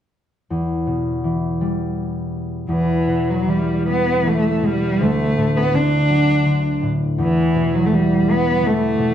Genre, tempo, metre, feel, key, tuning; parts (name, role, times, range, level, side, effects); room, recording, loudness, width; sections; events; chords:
celtic folk, Celtic slow air; 81 BPM; 3/4; uneven beats, rubato; E minor; A4 = 440 Hz
concert harp; accompaniment; 0.5-9.1 s; D2 to G3; -19 LUFS; left 1 dB
rich cello; melody; 2.7-9.1 s; E3 to D4; -18 LUFS; right 1 dB
wet recital hall reverb, RT60 1.5 s; dark, warm production; -16 LUFS; side -10 dB against mid
0.5-2.7 A section; 2.7-9.1 B section
0.5 Em; 5.0 D; 7.2 Em